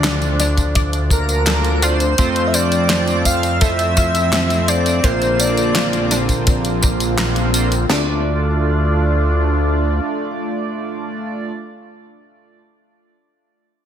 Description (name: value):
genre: synthwave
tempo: 84 BPM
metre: 4/4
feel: straight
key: D minor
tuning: A4 = 438 Hz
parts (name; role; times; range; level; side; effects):
- soft octave-layered synth lead; melody; 0.0-6.1 s; Bb4 to F5; -23 LUFS; left 1 dB; chorus, tremolo, cassette tape, digital delay
- airy dreamy lead; second line; 0.0-6.1 s; Bb4 to F5; -24 LUFS; equal; chorus, digital delay
- phased analog pad; sustained chords; 0.0-11.5 s; D3 to F4; -23 LUFS; left 1 dB; phaser, chorus, sidechain pumping
- analog pluck; arpeggios; 0.0-8.2 s; C4 to D5; -29 LUFS; left 3 dB; none
- chorused polysynth; stabs; 0.0-11.5 s; F3 to D5; -24 LUFS; right 5 dB; digital delay
- fat analog bass; bass; 0.0-10.0 s; Bb1 to F2; -19 LUFS; equal; sidechain pumping
- pop drum kit; drums; 0.0-7.9 s; handclaps, hi-hat, snare drum, tambourine; -21 LUFS; equal; studio reverb, gated reverb
- tight funk drum kit; drums; 0.6-8.1 s; kick drum, snare drum, splash cymbal; -17 LUFS; equal; studio reverb, gated reverb
room: light reverb, studio reverb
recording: none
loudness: -15 LUFS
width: side -9 dB against mid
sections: 0.0-7.9 A section; 7.9-10.8 B section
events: none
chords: 0.0 Dm; 2.2 F; 5.0 Bbadd9; 7.9 Dm